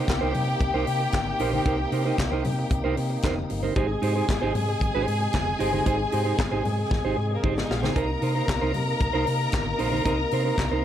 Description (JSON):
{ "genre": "disco", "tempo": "114 BPM", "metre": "4/4", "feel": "straight", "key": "unclear", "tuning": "A4 = 440 Hz", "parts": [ { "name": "clear studio string section", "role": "second line", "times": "0.0-10.8 s", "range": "Bb3 to Bb5", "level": "-29 LUFS", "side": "left 2 dB", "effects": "none" }, { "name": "mellow electric guitar", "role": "accompaniment", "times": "0.0-10.8 s", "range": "Eb4 to C5", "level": "-29 LUFS", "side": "right 6 dB", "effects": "none" }, { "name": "tonewheel organ", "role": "sustained chords", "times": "0.0-10.8 s", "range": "C3 to Ab4", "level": "-32 LUFS", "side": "left 1 dB", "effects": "chorus vibrato, fast rotary speaker" }, { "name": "fingered electric bass", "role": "bass", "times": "0.1-10.8 s", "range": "F1 to C3", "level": "-28 LUFS", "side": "equal", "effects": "none" }, { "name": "tight funk drum kit", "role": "drums", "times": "0.1-10.7 s", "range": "handclaps, hi-hat, kick drum, snare drum", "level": "-29 LUFS", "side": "equal", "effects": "none" }, { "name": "congas", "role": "percussion", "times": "0.1-10.7 s", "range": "none", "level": "-36 LUFS", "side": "left 4 dB", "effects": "none" } ], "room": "light reverb, small room ambience", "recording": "none", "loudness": "-22 LUFS", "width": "side -10 dB against mid", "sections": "0.0-10.8 A section", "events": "drum fill 6.9-8.0", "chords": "0.0 Cm7", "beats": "0.08 0.61 1.13 | 1.66 2.19 2.71 3.24 | 3.76 4.29 4.81 5.34 | 5.86 6.38 6.91 7.43 | 7.96 8.48 9.01 9.53 | 10.06 10.58" }